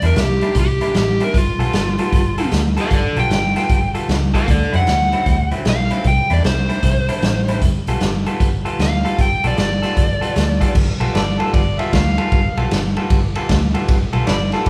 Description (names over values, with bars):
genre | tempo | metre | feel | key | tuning
electric blues shuffle | 153 BPM | 4/4 | swing 64% on 8ths | G mixolydian | A4 = 440 Hz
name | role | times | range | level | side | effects
overdriven slide guitar | melody | 0.0-10.7 s | F4 to G5 | -23 LUFS | equal | none
electric guitar through a small old amp | riff | 0.0-14.7 s | C3 to A4 | -27 LUFS | equal | none
vintage muted fingered electric bass | bass | 0.0-14.7 s | G1 to F#2 | -23 LUFS | equal | none
raw garage drum kit | drums | 0.0-14.7 s | crash cymbal, hi-hat, kick drum, ride cymbal, snare drum | -20 LUFS | equal | none
overdriven harmonica | second line | 11.2-14.7 s | A4 to F5 | -25 LUFS | equal | none
room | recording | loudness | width
moderate large studio reverb, RT60 1.1 s | band playing live in one room | -17 LUFS | mono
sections
0.0-10.8 A section; 10.8-14.7 B section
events
harmonica solo 10.8-14.7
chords
0.0 C9; 1.3 G9; 4.5 D9; 6.0 C9; 7.6 G9